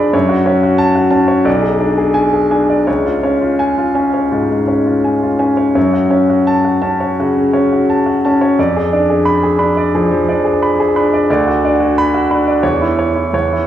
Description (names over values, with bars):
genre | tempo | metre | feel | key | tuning
classical, romantic character piece for solo piano | 79-91 BPM | 4/4 | rubato | F# minor | A4 = 441 Hz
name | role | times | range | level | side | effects
bright grand piano | solo | 0.0-13.7 s | B1 to Cb6 | -11 LUFS | equal | none
room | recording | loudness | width
wet recital hall reverb, RT60 1.4 s | heard from further back in the room | -11 LUFS | side -11 dB against mid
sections
0.0-13.7 A section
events
none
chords
0.1 F#m; 1.5 G#dim/B; 2.9 C#; 5.8 F#m; 8.6 Fdim7; 11.3 Bm/D; 12.6 C#m/E